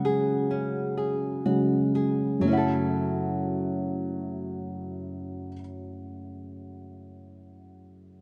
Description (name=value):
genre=pop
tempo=58-66 BPM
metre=4/4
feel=straight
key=F# minor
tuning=A4 = 440 Hz
part: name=felt-muted upright piano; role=accompaniment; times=0.0-8.2 s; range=F#2 to F#5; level=-30 LUFS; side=equal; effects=none
part: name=nylon-string guitar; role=arpeggios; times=0.0-6.1 s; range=C#3 to A4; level=-33 LUFS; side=equal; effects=none
room=moderate plate reverb, RT60 3.4 s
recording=nothing above 10.7 kHz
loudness=-27 LUFS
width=mono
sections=0.0-2.5 A section; 2.5-6.6 B section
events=slowing down 0.0-2.5; felt piano solo 0.0-2.5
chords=0.0 C#sus4; 2.5 F#m7